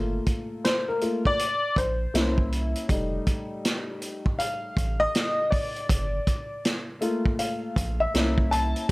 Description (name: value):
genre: hip hop, jazz-hop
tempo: 80 BPM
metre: 4/4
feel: swing 63% on 16ths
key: G minor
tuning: A4 = 436 Hz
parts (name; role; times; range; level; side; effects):
- dark upright piano; accompaniment; 0.0-8.9 s; G3 to A5; -27 LUFS; left 1 dB; none
- soft dub sub bass; bass; 0.0-8.9 s; F1 to C2; -28 LUFS; equal; none
- vintage drum kit; drums; 0.3-8.9 s; hi-hat, kick drum, snare drum; -27 LUFS; equal; none
room: light reverb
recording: none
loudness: -23 LUFS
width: side -21 dB against mid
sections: 0.0-8.9 A section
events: upright piano solo 0.0-8.9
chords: 0.0 Gm9 (rootless); 2.1 C7b9; 2.9 F7; 5.9 Gm9; 8.1 C7b9